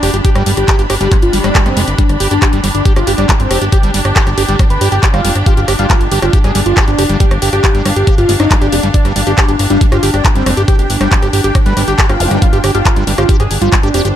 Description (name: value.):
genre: psychedelic trance.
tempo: 138 BPM.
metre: 4/4.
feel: straight.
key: unclear.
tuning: A4 = 440 Hz.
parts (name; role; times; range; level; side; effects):
wide unison lead; melody; 0.0-14.0 s; C4 to B4; -18 LUFS; equal; phaser, cassette tape, sidechain pumping, ping-pong delay.
evolving wavetable pad; sustained chords; 0.0-14.2 s; D4; -23 LUFS; equal; chorus, built-in reverb, sidechain pumping.
screaming distorted acid line; riff; 0.0-14.1 s; G3 to G4; -19 LUFS; moving between left 3 dB and right 4 dB; distortion, chorus, auto-pan, sidechain pumping, ping-pong delay.
fat analog bass; bass; 0.0-14.1 s; F1 to G1; -16 LUFS; equal; none.
drum and bass drum kit; drums; 0.0-14.1 s; handclaps, hi-hat, rim click; -18 LUFS; left 1 dB; none.
clear studio string section; texture; 0.0-14.2 s; D4 to B5; -22 LUFS; right 1 dB; sidechain pumping.
electronic kick drum; drums; 0.2-13.8 s; none; -11 LUFS; equal; none.
swell and zap; sound effects; 1.3-2.0, 12.2-12.3 s; none; -20 LUFS; equal; none.
room: little or no reverb.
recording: none.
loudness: -9 LUFS.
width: side -11 dB against mid.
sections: 0.0-14.2 A section.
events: swell 1.3-2.0.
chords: 0.0 G5.